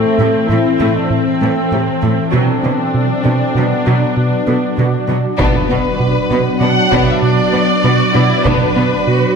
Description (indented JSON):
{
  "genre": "cinematic, hybrid orchestral and electronic film score",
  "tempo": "98 BPM",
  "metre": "5/4",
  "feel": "straight",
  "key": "B phrygian",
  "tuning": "A4 = 445 Hz",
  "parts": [
    { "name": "clear symphonic viola section", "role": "accompaniment", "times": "0.0-9.4 s", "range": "C3 to F#4", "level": "-21 LUFS", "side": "right 1 dB", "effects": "none" },
    { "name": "mellow French horn section", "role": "sustained chords", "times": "0.0-5.1 s", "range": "A3 to E4", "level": "-19 LUFS", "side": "left 3 dB", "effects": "none" },
    { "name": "shimmering ambient pad", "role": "sustained chords", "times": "0.0-9.4 s", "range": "E3 to E5", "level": "-19 LUFS", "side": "left 1 dB", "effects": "chorus, built-in reverb, phaser" },
    { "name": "rubbery square bass", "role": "riff", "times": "0.0-9.3 s", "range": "A2 to B3", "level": "-17 LUFS", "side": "right 2 dB", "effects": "none" },
    { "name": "clear studio cello section", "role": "bass", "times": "0.2-8.8 s", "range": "A2 to B2", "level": "-22 LUFS", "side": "right 3 dB", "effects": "none" },
    { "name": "warm symphonic violin section", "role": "melody", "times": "5.4-9.4 s", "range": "B4 to F#5", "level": "-17 LUFS", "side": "left 2 dB", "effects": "none" },
    { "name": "rich studio violin section", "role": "second line", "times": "5.4-8.8 s", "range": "B3 to D4", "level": "-22 LUFS", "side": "left 4 dB", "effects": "none" },
    { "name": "mellow trombone section", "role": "sustained chords", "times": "5.4-9.4 s", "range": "F#3 to D4", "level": "-19 LUFS", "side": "right 5 dB", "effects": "none" },
    { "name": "taiko ensemble", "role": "drums", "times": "5.4-9.0 s", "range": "none", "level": "-22 LUFS", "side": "right 1 dB", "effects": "none" },
    { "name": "impact", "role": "sound effects", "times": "5.4-8.4 s", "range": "none", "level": "-25 LUFS", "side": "equal", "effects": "none" }
  ],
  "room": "wet concert hall reverb, RT60 2.1 s",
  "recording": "none",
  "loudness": "-12 LUFS",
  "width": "side -6 dB against mid",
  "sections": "0.0-5.4 A section; 5.4-9.4 A section",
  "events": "impact 5.4-8.5",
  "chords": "0.0 Am; 2.3 Bm",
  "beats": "0.49 1.10 1.72 | 2.33 2.94 3.55 4.17 4.78 | 5.39 6.00 6.61 7.23 7.84 | 8.45 9.06"
}